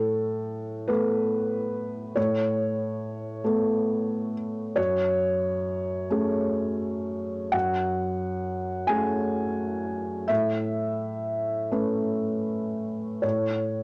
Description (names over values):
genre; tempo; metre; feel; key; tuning
neoclassical minimalist piano; 37-49 BPM (dotted quarters); 6/8; rubato; unclear; A4 = 440 Hz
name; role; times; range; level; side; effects
felt-muted upright piano; solo; 0.0-13.8 s; F#2 to G#5; -27 LUFS; equal; none
room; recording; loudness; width
wet small room reverb, RT60 0.5 s; home recording on cassette; -27 LUFS; mono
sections
0.0-13.8 A section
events
none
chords
0.0 Aadd9; 4.8 F#madd9; 10.3 Aadd9